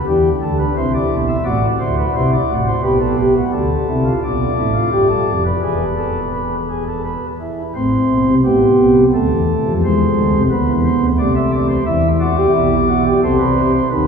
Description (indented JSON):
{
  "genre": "classical, baroque-style 3-part fugue for pipe organ",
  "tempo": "87 BPM",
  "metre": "3/4",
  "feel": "straight",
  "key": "G major, A minor from 3.5 s",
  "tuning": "A4 = 439 Hz",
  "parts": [
    { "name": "pipe organ, flutes", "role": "solo", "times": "0.0-14.1 s", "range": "E1 to E5", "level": "-13 LUFS", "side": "equal", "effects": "none" }
  ],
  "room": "wet cathedral reverb, RT60 5.3 s",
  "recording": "recorded in a church or concert hall, small room reverb",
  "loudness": "-13 LUFS",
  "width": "side -6 dB against mid",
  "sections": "0.0-3.5 A section; 3.5-7.7 B section; 7.7-14.1 C section",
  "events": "none",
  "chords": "0.0 G; 0.8 C; 1.5 D7/A; 2.8 G/B; 3.5 Dm; 5.6 E; 7.7 Am; 9.1 Dm; 9.8 E7; 11.2 Am/C; 11.9 Em; 13.2 Am/C"
}